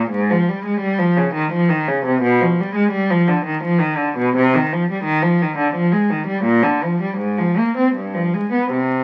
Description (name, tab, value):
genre	classical, baroque-style suite movement for unaccompanied cello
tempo	84 BPM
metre	3/4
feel	uneven beats, rubato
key	unclear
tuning	A4 = 439 Hz
part	rich cello	solo	0.0-9.0 s	G2 to C4	-18 LUFS	equal	none
room	moderate studio reverb, RT60 0.6 s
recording	very old 78 rpm record, vinyl crackle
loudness	-18 LUFS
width	mono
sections	0.0-9.0 A section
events	none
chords	none